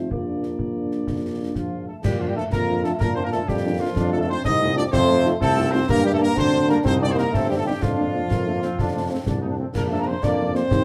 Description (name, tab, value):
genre	military-style march for wind band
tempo	125 BPM (dotted quarters)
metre	6/8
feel	straight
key	Bb major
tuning	A4 = 443 Hz
part	bright trumpet section	melody	0.0-10.8 s	F4 to Eb5	-30 LUFS	equal	none
part	warm euphonium	second line	0.0-10.8 s	F3 to Eb4	-28 LUFS	equal	none
part	mellow French horn section	accompaniment	0.0-10.6 s	F3 to F4	-31 LUFS	equal	none
part	clear tuba	bass	0.0-10.8 s	G1 to Bb2	-28 LUFS	equal	none
part	concert bass drum, concert snare drum and clash cymbals	drums	0.1-10.8 s	none	-29 LUFS	equal	none
part	hollow flute section	second line	1.6-10.8 s	F5 to Eb6	-36 LUFS	equal	none
part	bright trombone section	sustained chords	2.5-10.8 s	A3 to F4	-31 LUFS	equal	none
room	moderate plate reverb, RT60 1.1 s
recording	heard from further back in the room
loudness	-22 LUFS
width	mono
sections	0.0-2.0 A section; 2.0-10.8 A section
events	none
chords	0.1 Bb; 4.0 F7; 5.9 Gm; 6.9 Cm; 7.8 Bb/F; 8.8 F; 9.7 Bb